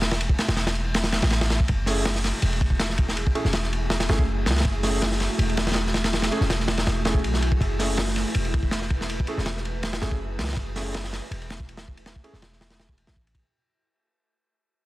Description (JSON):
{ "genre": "drum and bass, jungle", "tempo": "162 BPM", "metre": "4/4", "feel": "straight", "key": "F# minor", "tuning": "A4 = 440 Hz", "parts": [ { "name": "warm 808-style bass", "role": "bass", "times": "0.0-13.4 s", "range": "E1 to C#2", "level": "-26 LUFS", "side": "equal", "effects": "none" }, { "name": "crunchy breakbeat drum kit", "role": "drums", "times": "0.0-13.4 s", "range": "hi-hat, kick drum, ride cymbal, snare drum", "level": "-24 LUFS", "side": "equal", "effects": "none" }, { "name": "ethereal airy pad", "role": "sustained chords", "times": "2.3-13.5 s", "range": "A3 to B4", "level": "-34 LUFS", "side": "equal", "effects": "ensemble chorus, built-in reverb, vintage 12-bit sampler grit" }, { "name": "clear grand piano", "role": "stabs", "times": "1.9-12.3 s", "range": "A3 to G#4", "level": "-33 LUFS", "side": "right 2 dB", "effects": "vintage 12-bit sampler grit, dub echo" } ], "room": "studio ambience", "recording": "dense, heavily limited modern master, vinyl crackle", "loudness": "-22 LUFS", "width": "side -17 dB against mid", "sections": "0.0-13.5 A section", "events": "drop 0.0-13.5; fade-out 7.6-13.5", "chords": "0.0 F#m9" }